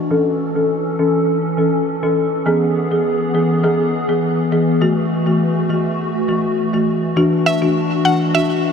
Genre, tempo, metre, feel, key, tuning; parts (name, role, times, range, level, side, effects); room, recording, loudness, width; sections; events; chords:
dancehall; 102 BPM; 4/4; straight; A major; A4 = 440 Hz
hollow soft pad; sustained chords; 0.0-8.7 s; E3 to A4; -20 LUFS; equal; ensemble chorus, low-pass filter
folk marimba with soft mallets; accompaniment; 0.1-8.5 s; E3 to A4; -17 LUFS; left 1 dB; low-pass filter
mallet-like synth pluck; melody; 7.5-8.7 s; E5 to F#5; -18 LUFS; right 1 dB; chorus, diffuse ambient delay
wet huge ambient reverb, RT60 8.4 s; dreamy mix soaked in reverb; -15 LUFS; side -6 dB against mid
0.0-7.2 A section; 7.2-8.7 B section
filter sweep 0.0-7.2
0.1 A; 2.5 E; 4.8 F#m7; 7.2 Dadd9